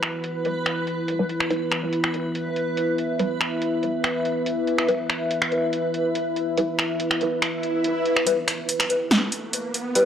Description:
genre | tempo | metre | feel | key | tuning
deep dubstep | 142 BPM | 4/4 | half-time | unclear | A4 = 441 Hz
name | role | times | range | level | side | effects
deep dark ambient pad | sustained chords | 0.0-10.1 s | E4 to F#5 | -25 LUFS | left 1 dB | chorus, built-in reverb
deep house drum kit | drums | 0.0-10.0 s | finger snaps, hi-hat, snare drum | -24 LUFS | equal | overdrive, low-pass filter on hats, studio reverb, low-pass filter on snare
backwards swelling texture | texture | 0.0-8.3 s | B4 | -32 LUFS | right 2 dB | built-in reverb
filtered dub chord stab | stabs | 1.2-10.0 s | G3 to B4 | -24 LUFS | left 1 dB | phaser, wide subtle chorus, dub echo
swell and riser | sound effects | 7.6-10.1 s | none | -30 LUFS | right 2 dB | none
room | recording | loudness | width
moderate spring reverb, RT60 1.4 s | dry, gritty hardware recording, cassette tape | -21 LUFS | side -9 dB against mid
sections
0.0-8.3 A section; 8.3-10.1 B section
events
filter sweep on ambient pad 0.0-8.3; swell 7.6-8.3; build-up 8.3-10.1; riser 8.3-10.1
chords
0.0 E5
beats
0.24 0.66 1.08 | 1.50 1.93 2.35 2.77 | 3.19 3.62 4.04 4.46 | 4.88 5.31 5.73 6.15 | 6.58 7.00 7.42 7.84 | 8.27 8.69 9.11 9.53 | 9.96

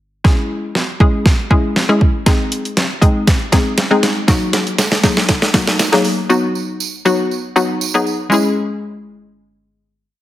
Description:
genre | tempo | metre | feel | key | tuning
dance-pop | 119 BPM | 4/4 | straight | C# dorian | A4 = 440 Hz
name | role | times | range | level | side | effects
hollow square pluck | accompaniment | 0.2-10.2 s | F#3 to G#4 | -16 LUFS | left 2 dB | chorus, sidechain pumping
deep house drum kit | drums | 0.2-6.2 s | hi-hat, kick drum, snare drum | -14 LUFS | right 1 dB | none
tambourine | percussion | 4.3-8.6 s | none | -26 LUFS | right 9 dB | none
room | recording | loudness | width
light reverb, digital ambience | heavily compressed radio sound, high-pass filter | -13 LUFS | side -14 dB against mid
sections
0.2-8.3 build; 8.3-10.2 final chord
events
build-up 0.2-8.3; drum fill 0.2-6.3; filter sweep 0.2-8.3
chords
0.2 C#m; 2.3 G#; 4.3 D#m; 6.3 B; 8.3 C#m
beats
| 0.25 0.75 1.26 1.76 | 2.27 2.77 3.27 3.78 | 4.28 4.79 5.29 5.79 | 6.30 6.80 7.31 7.81 | 8.32 8.82 9.32 9.83

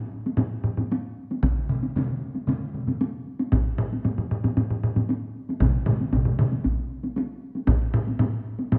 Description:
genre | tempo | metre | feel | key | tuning
japanese traditional, taiko drum ensemble | 115 BPM | 4/4 | straight | none | none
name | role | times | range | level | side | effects
taiko ensemble | percussion | 0.3-8.8 s | none | -31 LUFS | equal | none
solo taiko drums | percussion | 0.4-8.8 s | none | -28 LUFS | equal | none
solo taiko drums | percussion | 1.4-7.8 s | none | -28 LUFS | equal | none
taiko ensemble | percussion | 1.4-6.5 s | none | -29 LUFS | equal | none
room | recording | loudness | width
wet recital hall reverb, RT60 1.5 s | none | -26 LUFS | mono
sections
0.0-8.8 A section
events
none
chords
none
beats
0.38 0.90 | 1.43 1.95 2.48 3.00 | 3.52 4.04 4.57 5.09 | 5.61 6.13 6.65 7.17 | 7.68 8.20 8.72

